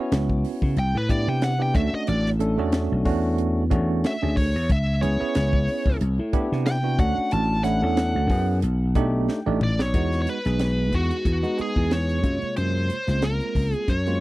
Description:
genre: electric jazz fusion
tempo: 92 BPM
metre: 4/4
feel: swing 55% on 16ths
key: unclear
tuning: A4 = 439 Hz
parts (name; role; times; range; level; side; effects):
- bell-like tine electric piano; accompaniment; 0.0-14.2 s; C3 to G5; -27 LUFS; right 2 dB; medium stereo tremolo
- vintage slap bass; bass; 0.1-14.2 s; A1 to C#3; -23 LUFS; equal; none
- tight funk drum kit; drums; 0.1-14.2 s; hi-hat, kick drum, snare drum, toms; -25 LUFS; equal; none
- biting lead guitar; melody; 0.8-14.2 s; F#4 to A5; -28 LUFS; left 1 dB; overdrive, tape echo
room: little or no reverb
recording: dry, close 1970s-style studio recording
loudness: -20 LUFS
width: side -18 dB against mid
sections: 0.0-9.9 A section; 9.9-14.2 B section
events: lead electric guitar solo 0.0-9.9; tine electric piano fill 9.0-9.9; drum fill 9.3-9.9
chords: 0.0 C#m7; 0.8 Cmaj9; 1.8 Bm7 (rootless); 3.1 E13sus4; 4.7 C#m7; 6.0 Cmaj9; 7.0 Dmaj9/A; 8.3 F#9sus4; 8.6 B7alt; 9.9 Emaj9; 12.2 Gbmaj9#11

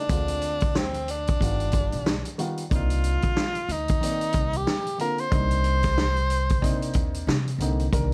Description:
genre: hip hop, jazz-hop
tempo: 92 BPM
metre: 4/4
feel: swing 59% on 16ths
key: C minor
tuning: A4 = 443 Hz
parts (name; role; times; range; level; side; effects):
- breathy tenor saxophone; melody; 0.0-7.3 s; C4 to C5; -30 LUFS; equal; none
- dark baby grand piano; accompaniment; 0.1-8.1 s; D3 to D5; -34 LUFS; equal; none
- upright bass; bass; 0.1-8.1 s; G1 to C3; -29 LUFS; equal; none
- vintage drum kit; drums; 0.1-8.1 s; hi-hat, kick drum, snare drum; -29 LUFS; equal; none
room: little or no reverb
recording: vinyl crackle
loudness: -25 LUFS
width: mono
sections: 0.0-7.9 A section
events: none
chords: 0.1 Dm7b5; 1.4 G7b13; 2.7 Cm9

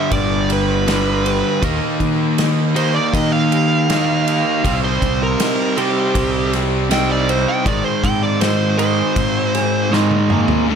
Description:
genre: quiet-loud alternative rock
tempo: 80 BPM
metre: 4/4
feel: straight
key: unclear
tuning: A4 = 438 Hz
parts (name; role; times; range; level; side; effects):
- fuzz lead guitar; melody; 0.0-10.8 s; Ab3 to G5; -20 LUFS; right 3 dB; distortion, digital delay
- electric guitar through a small old amp; arpeggios; 0.0-10.7 s; G2 to Ab4; -26 LUFS; left 1 dB; wide subtle chorus
- fuzz guitar; riff; 0.0-10.8 s; G2 to Eb4; -22 LUFS; left 15 dB; distortion
- overdriven electric guitar; riff; 0.0-10.7 s; G2 to Eb4; -22 LUFS; right 12 dB; none
- growling fingered electric bass; bass; 0.1-10.5 s; G1 to Eb3; -21 LUFS; left 1 dB; overdrive
- loose indie drum kit; drums; 0.1-10.7 s; kick drum, ride cymbal, snare drum, toms; -22 LUFS; equal; none
room: light reverb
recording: none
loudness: -14 LUFS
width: side -7 dB against mid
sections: 0.0-10.7 A section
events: lead electric guitar solo 0.0-10.7; drum fill 9.9-10.7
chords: 0.0 G; 1.6 Eb; 4.6 Cm; 7.7 Ab

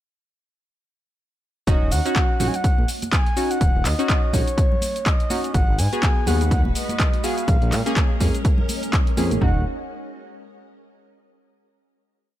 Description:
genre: deep house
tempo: 124 BPM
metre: 4/4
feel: swing 58% on 16ths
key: Eb minor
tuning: A4 = 436 Hz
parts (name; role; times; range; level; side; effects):
- breathy flute-like synth lead; melody; 1.7-9.6 s; Db5 to Ab5; -28 LUFS; equal; chorus, ping-pong delay
- deep mellow chord stab; stabs; 1.7-9.6 s; Bb3 to Ab4; -26 LUFS; equal; chorus, sidechain pumping, tape echo
- smooth synth bass; bass; 1.7-9.6 s; Eb1 to Bb2; -22 LUFS; equal; sidechain pumping
- punchy analog drum machine; drums; 1.7-9.5 s; kick drum, toms; -20 LUFS; equal; none
- punchy analog drum machine; drums; 1.7-9.4 s; handclaps, hi-hat, shaker; -27 LUFS; equal; none
- congas; percussion; 2.4-9.4 s; none; -32 LUFS; right 2 dB; none
- soft string machine; sustained chords; 6.0-9.6 s; Ab3 to Cb5; -32 LUFS; equal; ensemble chorus, sidechain pumping
room: digital ambience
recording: none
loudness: -18 LUFS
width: side -13 dB against mid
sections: 1.7-9.4 drop; 9.4-11.4 final chord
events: drop 1.7-9.4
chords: 1.7 Ebm7; 5.5 Abm7; 7.5 Bbm7; 9.4 Ebm7

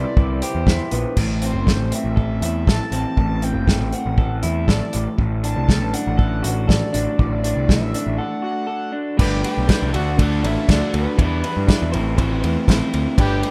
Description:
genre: indie rock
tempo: 120 BPM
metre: 4/4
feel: straight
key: unclear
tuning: A4 = 440 Hz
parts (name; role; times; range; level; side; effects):
- overdriven synth lead; melody; 0.0-13.5 s; B4 to A5; -32 LUFS; equal; distortion, tape echo
- phased string machine; sustained chords; 0.0-1.1, 5.2-9.2 s; C3 to F#4; -43 LUFS; equal; none
- electric guitar through a small old amp; riff; 0.0-13.5 s; A2 to C5; -26 LUFS; equal; none
- fuzz picked electric bass; bass; 0.0-13.4 s; F#1 to G2; -24 LUFS; equal; overdrive
- loose indie drum kit; drums; 0.2-13.5 s; crash cymbal, hi-hat, kick drum, ride cymbal, snare drum; -22 LUFS; equal; none
- bright trumpet; second line; 9.2-13.5 s; B3 to G4; -35 LUFS; equal; none
room: studio reverb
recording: rough home demo mix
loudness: -20 LUFS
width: mono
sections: 0.0-1.2 A section; 1.2-9.2 B section; 9.2-13.5 C section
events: analog synth lead solo 0.0-1.2; break 8.2-9.2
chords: 0.0 Cmaj7; 1.2 Am; 4.9 D/A; 9.2 Gadd9; 9.9 D; 11.2 Em7; 11.9 Am

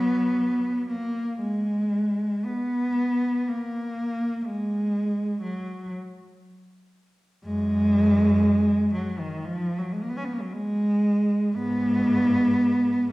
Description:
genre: classical, free, expressive piece for unaccompanied cello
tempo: 55-62 BPM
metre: 4/4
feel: rubato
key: unclear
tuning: A4 = 441 Hz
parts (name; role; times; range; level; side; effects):
- warm cello; solo; 0.0-13.1 s; Gb2 to Db4; -22 LUFS; equal; none
room: wet recital hall reverb, RT60 1.6 s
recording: heard from further back in the room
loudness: -22 LUFS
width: side -20 dB against mid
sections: 0.0-13.1 A section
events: none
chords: none

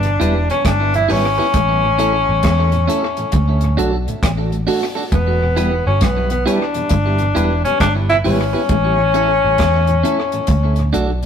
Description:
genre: roots reggae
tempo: 67 BPM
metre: 4/4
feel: swing 64% on 16ths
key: E dorian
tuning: A4 = 440 Hz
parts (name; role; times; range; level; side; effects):
- warm tenor saxophone; melody; 0.0-10.9 s; B3 to E4; -17 LUFS; left 2 dB; none
- mellow tonewheel organ; accompaniment; 0.0-11.3 s; D2 to F#4; -25 LUFS; equal; slow rotary speaker, tape echo
- vintage muted fingered electric bass; bass; 0.0-11.2 s; E1 to E2; -18 LUFS; equal; none
- deep reggae drum kit; drums; 0.0-11.3 s; hi-hat, kick drum, rim click; -21 LUFS; equal; tape echo
- clean electric guitar; accompaniment; 0.2-11.1 s; C#4 to B4; -23 LUFS; right 3 dB; tape echo
room: moderate stone room reverb, RT60 1.3 s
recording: rough rehearsal-room recording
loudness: -14 LUFS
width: side -8 dB against mid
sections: 0.0-11.3 A section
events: none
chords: 0.0 Em; 1.5 A; 3.3 D; 5.1 Em; 8.7 A; 10.5 D

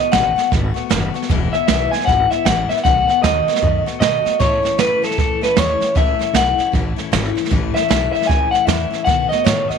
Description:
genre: rockabilly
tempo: 154 BPM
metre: 4/4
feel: swing 62% on 8ths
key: unclear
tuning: A4 = 440 Hz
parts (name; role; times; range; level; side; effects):
- electric guitar through a small old amp; melody; 0.0-9.8 s; A4 to G#5; -17 LUFS; left 2 dB; tape echo
- picked steel-string acoustic guitar; accompaniment; 0.0-9.8 s; E2 to F#4; -24 LUFS; left 15 dB; none
- upright bass; bass; 0.1-9.7 s; E1 to B2; -22 LUFS; equal; none
- jazz brush drum kit; drums; 0.1-9.7 s; hi-hat, kick drum, snare drum; -20 LUFS; right 5 dB; none
room: small room ambience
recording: 1960s-style stereo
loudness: -14 LUFS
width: side -6 dB against mid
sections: 0.0-9.8 A section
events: none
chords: 0.0 B7; 1.3 E; 2.8 B7; 4.4 A; 9.1 B7

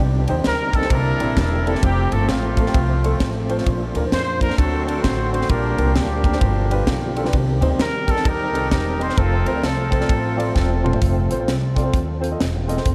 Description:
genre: uptempo gospel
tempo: 131 BPM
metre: 4/4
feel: swing 63% on 8ths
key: unclear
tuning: A4 = 440 Hz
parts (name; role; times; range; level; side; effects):
- dark grand piano; accompaniment; 0.0-12.9 s; G2 to A5; -28 LUFS; equal; none
- percussive tonewheel organ; sustained chords; 0.0-11.4 s; B2 to F#4; -29 LUFS; equal; slow rotary speaker, overdrive, chorus vibrato
- upright bass; bass; 0.0-12.9 s; E1 to F2; -24 LUFS; equal; none
- crisp fusion drum kit; drums; 0.3-12.9 s; hi-hat, kick drum, ride cymbal, snare drum, toms; -25 LUFS; equal; none
- warm horn section; melody; 0.5-10.9 s; A3 to C5; -27 LUFS; equal; tape echo
room: moderate huge ambient reverb, RT60 6.8 s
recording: dreamy mix soaked in reverb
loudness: -20 LUFS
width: mono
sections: 0.0-11.0 A section; 11.0-12.9 B section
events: grand piano fill 10.1-11.0; drum fill 10.6-11.0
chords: 0.0 Cm; 0.9 C9; 1.8 F; 3.7 Bb; 4.6 D7; 5.5 Gm/Bb; 6.4 G7; 7.3 Cm; 9.2 F

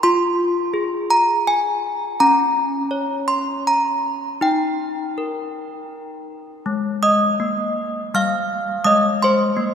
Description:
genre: classical, tune for handbells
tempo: 81 BPM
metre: 3/4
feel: uneven beats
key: Ab major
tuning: A4 = 440 Hz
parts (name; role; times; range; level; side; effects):
- desk bells; solo; 0.0-9.7 s; G3 to F6; -17 LUFS; equal; none
room: wet cathedral reverb, RT60 4.6 s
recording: recorded in a church or concert hall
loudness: -17 LUFS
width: side -8 dB against mid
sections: 0.0-6.7 A section; 6.7-9.7 B section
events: none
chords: 0.0 Fm; 2.2 N.C.; 4.4 Eb; 6.7 Ab5; 8.9 Ab

